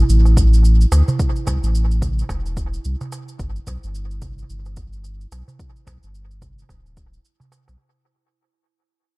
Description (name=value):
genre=organic downtempo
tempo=109 BPM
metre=4/4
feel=swing 59% on 16ths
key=unclear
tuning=A4 = 440 Hz
part: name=warm sub bass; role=bass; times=0.0-7.8 s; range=D1 to D2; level=-16 LUFS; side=equal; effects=sidechain pumping
part: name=bronze singing bowl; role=texture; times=0.0-7.8 s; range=E4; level=-33 LUFS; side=right 8 dB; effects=none
part: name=shaker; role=drums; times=0.1-7.8 s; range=none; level=-35 LUFS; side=right 2 dB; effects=dub echo
part: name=darbuka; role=percussion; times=0.3-7.8 s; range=none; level=-28 LUFS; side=right 2 dB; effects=dub echo
part: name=electronic kick drum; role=drums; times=0.4-7.1 s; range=none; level=-23 LUFS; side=equal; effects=none
room=little or no reverb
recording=echo-heavy mix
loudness=-15 LUFS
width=side -25 dB against mid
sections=0.0-7.8 A section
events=fade-out 0.0-7.8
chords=0.0 A5; 3.4 G5